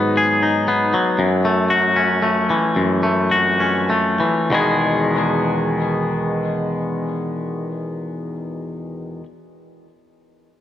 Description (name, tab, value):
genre	rock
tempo	94-118 BPM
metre	3/4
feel	straight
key	E major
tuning	A4 = 440 Hz
part	twangy electric guitar	arpeggios	0.0-9.3 s	E2 to G#4	-17 LUFS	left 1 dB	digital delay
room	wet large studio reverb, RT60 1.0 s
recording	none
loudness	-16 LUFS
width	side -11 dB against mid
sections	0.0-4.5 A section; 4.5-8.3 B section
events	slowing down 1.2-4.5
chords	0.0 G#m7; 1.2 F#m7; 4.5 Emaj7